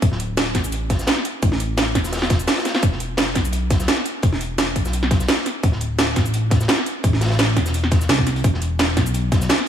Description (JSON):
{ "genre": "liquid drum and bass", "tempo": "171 BPM", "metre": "4/4", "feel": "swing 53% on 16ths", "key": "unclear", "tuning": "A4 = 440 Hz", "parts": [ { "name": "smooth synth bass", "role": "bass", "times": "0.0-9.5 s", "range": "D1 to C2", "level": "-22 LUFS", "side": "equal", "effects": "none" }, { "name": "crunchy breakbeat drum kit", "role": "drums", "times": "0.0-9.7 s", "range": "hi-hat, snare drum", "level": "-28 LUFS", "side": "left 1 dB", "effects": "high-pass filter on hats, small room ambience, high-pass filter on snare, high-pass filter on room" }, { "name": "drum and bass drum kit", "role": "drums", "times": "0.0-9.7 s", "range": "hi-hat, shaker, snare drum", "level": "-21 LUFS", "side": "right 1 dB", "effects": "overdrive, small room ambience" }, { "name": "electronic kick drum", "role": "drums", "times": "0.0-9.4 s", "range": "none", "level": "-18 LUFS", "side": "equal", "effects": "overdrive, small room ambience" } ], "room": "light reverb, studio reverb", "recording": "none", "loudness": "-17 LUFS", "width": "side -9 dB against mid", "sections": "0.0-9.7 A section", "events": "none", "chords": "none", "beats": "| 0.02 0.37 0.72 1.07 | 1.43 1.78 2.13 2.48 | 2.83 3.18 3.53 3.88 | 4.23 4.58 4.93 5.29 | 5.64 5.99 6.34 6.69 | 7.04 7.39 7.74 8.09 | 8.44 8.79 9.14 9.50" }